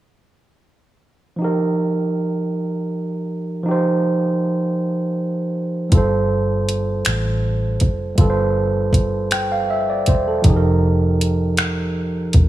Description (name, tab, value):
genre	slow six-eight R&B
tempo	53 BPM (dotted quarters)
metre	6/8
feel	straight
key	unclear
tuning	A4 = 435 Hz
part	overdriven tine electric piano	accompaniment	1.4-12.5 s	F3 to G5	-19 LUFS	right 2 dB	none
part	vintage muted fingered electric bass	bass	5.9-12.5 s	E1 to A1	-21 LUFS	equal	none
part	smooth R&B drum kit	drums	5.9-12.5 s	finger snaps, hi-hat, kick drum	-17 LUFS	equal	none
room	light reverb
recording	none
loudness	-17 LUFS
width	side -14 dB against mid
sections	1.4-10.5 A section; 10.5-12.5 B section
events	none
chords	1.4 F9sus4; 5.9 G9sus4; 10.5 F9sus4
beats	| 1.40 2.53 | 3.66 4.79 | 5.92 7.06 | 8.19 9.32 | 10.45 11.59